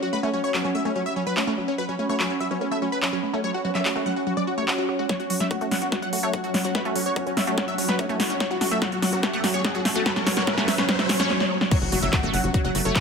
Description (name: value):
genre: psychedelic trance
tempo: 145 BPM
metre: 4/4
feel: straight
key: F# minor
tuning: A4 = 441 Hz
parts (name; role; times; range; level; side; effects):
- supersaw stab; melody; 0.0-13.0 s; C#4 to F#5; -28 LUFS; left 1 dB; phaser, cassette tape, sidechain pumping, ping-pong delay
- evolving wavetable pad; sustained chords; 0.0-13.0 s; F#3 to F#4; -30 LUFS; right 1 dB; phaser, built-in reverb, sidechain pumping
- wide unison pluck; riff; 0.0-13.0 s; F#3 to F#4; -29 LUFS; equal; auto-pan, sidechain pumping, ping-pong delay
- warbly tape-like pad; texture; 0.0-13.0 s; C#4 to C#6; -33 LUFS; right 3 dB; chorus, built-in reverb, sidechain pumping
- vowel-sweep wobble bass; second line; 0.1-12.6 s; F#3 to B3; -42 LUFS; right 1 dB; none
- big-room dance drum kit; drums; 0.5-13.0 s; crash cymbal, handclaps, hi-hat, snare drum; -26 LUFS; equal; overdrive
- electronic kick drum; drums; 5.1-13.0 s; none; -24 LUFS; left 1 dB; high-pass filter on kick, high-pass filter on room
- riser and impact; sound effects; 7.2-13.0 s; none; -31 LUFS; equal; none
- tight sequencer bass; bass; 11.8-12.9 s; F#1 to G#1; -27 LUFS; left 1 dB; none
room: moderate lush hall reverb, RT60 2.3 s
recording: none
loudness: -21 LUFS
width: side -5 dB against mid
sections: 0.0-5.1 A section; 5.1-11.7 B section; 11.7-13.0 C section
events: filter sweep on ambient pad 0.0-5.1; build-up 5.1-11.7; drum fill 5.1-11.3, 11.3-11.7; filter sweep on synth arpeggio sound 5.1-11.7; riser 7.2-11.3; drop 11.7-13.0; impact 11.7-13.0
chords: 0.0 F#5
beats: | 0.13 0.54 0.96 1.37 | 1.78 2.20 2.61 3.02 | 3.44 3.85 4.27 4.68 | 5.09 5.51 5.92 6.33 | 6.75 7.16 7.58 7.99 | 8.40 8.82 9.23 9.64 | 10.06 10.47 10.89 11.30 | 11.71 12.13 12.54 12.96